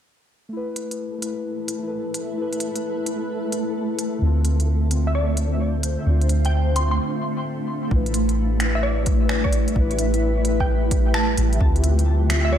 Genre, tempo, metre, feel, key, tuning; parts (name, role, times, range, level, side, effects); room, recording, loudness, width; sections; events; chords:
future garage; 130 BPM; 4/4; swing 66% on 16ths; A minor; A4 = 440 Hz
muted felt-like synth keys; accompaniment; 0.5-12.6 s; D3 to B4; -28 LUFS; left 4 dB; chorus, sidechain pumping, low-pass filter, analog delay
granular cloud pad; sustained chords; 1.5-12.6 s; A3 to F5; -27 LUFS; right 2 dB; built-in reverb, analog chorus, sidechain pumping
flickering grainy texture; texture; 1.1-12.6 s; G3 to A4; -35 LUFS; equal; built-in reverb
organic electronic drum kit; drums; 0.8-12.4 s; finger snaps, hi-hat; -28 LUFS; right 1 dB; overdrive
soft 808-style bass; bass; 4.2-12.6 s; A1 to D2; -21 LUFS; equal; tube saturation, sidechain pumping
glassy wavetable pluck; melody; 5.1-12.6 s; D5 to C6; -29 LUFS; equal; chorus, diffuse ambient delay
electronic kick drum; drums; 7.9-11.7 s; -22 LUFS; equal; overdrive
moderate lush hall reverb, RT60 1.6 s, digital ambience; dreamy mix soaked in reverb; -19 LUFS; side -9 dB against mid
0.5-7.9 A section; 7.9-12.6 B section
filter sweep on synth keys 0.5-7.9; break 7.0-7.9
0.5 Asus2; 4.2 Dm7; 7.9 Asus2; 11.6 Dm7